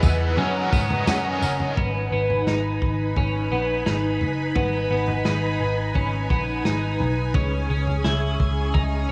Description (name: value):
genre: dream pop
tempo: 86 BPM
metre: 4/4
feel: straight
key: unclear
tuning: A4 = 441 Hz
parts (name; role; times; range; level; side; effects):
- crunchy overdriven guitar; accompaniment; 0.0-1.8 s; F#3 to A#4; -32 LUFS; equal; tremolo, ensemble chorus
- string machine, violas; sustained chords; 0.0-9.1 s; C#4 to E6; -29 LUFS; equal; phaser, ensemble chorus
- twelve-string electric guitar; arpeggios; 0.0-9.1 s; B3 to E4; -31 LUFS; equal; subtle chorus, tape echo
- vintage muted picked electric bass; bass; 0.0-9.1 s; F#1 to G#2; -28 LUFS; equal; none
- vintage drum kit; drums; 0.0-8.9 s; kick drum, snare drum, tambourine, toms; -27 LUFS; equal; none
room: moderate concert hall reverb, RT60 2.4 s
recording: small room ambience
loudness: -23 LUFS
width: mono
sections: 0.0-1.8 A section; 1.8-9.1 B section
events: none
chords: 0.4 F#6; 7.4 C#m